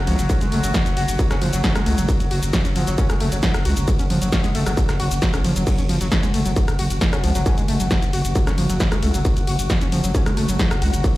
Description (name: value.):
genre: driving peak-time techno.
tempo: 134 BPM.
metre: 4/4.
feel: straight.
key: unclear.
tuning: A4 = 440 Hz.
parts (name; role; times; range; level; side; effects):
growling FM bass; bass; 0.0-11.0 s; F#1 to C#2; -22 LUFS; equal; sidechain pumping.
analog drone; drone; 0.0-11.2 s; F#3 to F#4; -30 LUFS; left 2 dB; chorus, sidechain pumping.
overdriven synth lead; riff; 0.1-11.1 s; E#3 to F#4; -26 LUFS; equal; distortion, tube saturation, sidechain pumping, digital delay.
punchy analog drum machine; drums; 0.1-11.1 s; crash cymbal, hi-hat, ride cymbal, rim click, shaker, snare drum; -25 LUFS; equal; none.
electronic kick drum; drums; 0.3-11.1 s; none; -20 LUFS; equal; distortion.
room: light reverb.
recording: played on a big sound system in a bare room, large studio reverb.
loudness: -17 LUFS.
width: side -17 dB against mid.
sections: 0.0-11.2 A section.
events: none.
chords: 0.0 F#5.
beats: | 0.30 0.74 1.19 1.64 | 2.09 2.54 2.98 3.43 | 3.88 4.33 4.77 5.22 | 5.67 6.12 6.56 7.01 | 7.46 7.91 8.36 8.80 | 9.25 9.70 10.15 10.59 | 11.04.